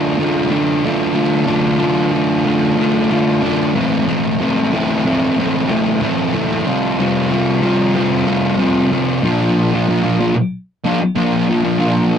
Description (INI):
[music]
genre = rock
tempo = 93 BPM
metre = 4/4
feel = straight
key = D minor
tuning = A4 = 440 Hz
[part]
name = fuzz guitar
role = solo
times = 0.0-12.2 s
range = A2 to F4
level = -14 LUFS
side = equal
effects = distortion
[sound]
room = wet booth ambience, RT60 0.2 s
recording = rough rehearsal-room recording, warm saturation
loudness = -14 LUFS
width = side -8 dB against mid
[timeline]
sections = 0.0-9.2 A section; 9.2-12.2 B section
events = none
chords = 0.0 Dm; 3.7 Am; 6.6 Csus4; 9.2 Bb